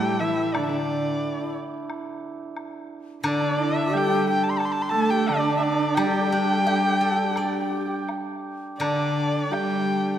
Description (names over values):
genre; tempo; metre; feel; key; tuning
chinese traditional, Chinese chamber ensemble; 88 BPM; 4/4; rubato; unclear; A4 = 438 Hz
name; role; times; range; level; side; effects
dark erhu; melody; 0.0-10.2 s; D5 to C6; -27 LUFS; left 1 dB; none
breathy bright low xiao; second line; 0.0-10.2 s; D4 to A4; -30 LUFS; left 5 dB; none
hammered dulcimer; second line; 0.0-10.2 s; D4 to A4; -28 LUFS; right 4 dB; none
warm cello; second line; 0.0-10.2 s; D3 to A3; -28 LUFS; right 1 dB; none
steel-string zither; accompaniment; 0.0-10.2 s; A2 to D5; -31 LUFS; equal; none
woodblock; percussion; 0.5-9.7 s; none; -35 LUFS; left 3 dB; none
room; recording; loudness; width
wet scoring stage reverb, RT60 1.9 s; none; -21 LUFS; side -10 dB against mid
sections
0.0-8.8 A section; 8.8-10.2 B section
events
none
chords
none